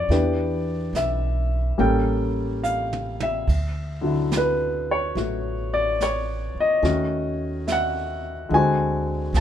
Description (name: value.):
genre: jazz ballad.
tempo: 71 BPM.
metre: 4/4.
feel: swing 67% on 8ths.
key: unclear.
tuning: A4 = 440 Hz.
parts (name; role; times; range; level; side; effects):
warm baby grand piano; accompaniment; 0.0-9.4 s; D3 to A5; -22 LUFS; left 1 dB; none.
upright bass; bass; 0.0-9.4 s; A1 to E2; -26 LUFS; right 1 dB; none.
vintage brush drum kit; drums; 0.1-9.4 s; brushed snare drum, hi-hat, kick drum, ride cymbal, snare drum, toms; -32 LUFS; right 5 dB; none.
room: light reverb.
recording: minimal, uncompressed stereo recording.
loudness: -21 LUFS.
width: side -10 dB against mid.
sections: 0.0-9.4 A section.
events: drum fill 2.6-3.5.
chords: 0.1 Em7; 1.8 A7b9; 3.5 Dmaj9; 6.8 D#m7b5; 8.5 D7#11.